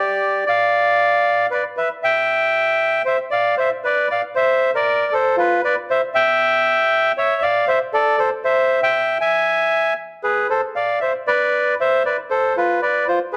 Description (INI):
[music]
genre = tango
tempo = 117 BPM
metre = 4/4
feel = rubato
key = C major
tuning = A4 = 440 Hz
[part]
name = bandoneon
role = solo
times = 0.0-13.4 s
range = F4 to Ab5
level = -18 LUFS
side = equal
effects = none
[sound]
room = wet large studio reverb, RT60 1.4 s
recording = dark, warm production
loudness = -18 LUFS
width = mono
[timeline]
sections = 0.0-10.5 A section; 10.5-13.4 B section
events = none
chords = 0.2 G5; 1.2 Bmadd11; 2.3 C (rootless); 3.3 Bdim; 4.3 Amadd11; 5.4 F5; 6.4 C#dim; 7.4 D5; 8.4 C; 9.5 E; 10.5 Amadd9; 12.5 Fdim7(no3)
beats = | 0.21 0.72 1.24 1.76 | 2.28 2.79 3.31 3.82 | 4.34 4.85 5.36 5.88 | 6.39 6.90 7.41 7.92 | 8.43 8.94 9.45 9.97 | 10.49 11.00 11.52 12.03 | 12.54 13.05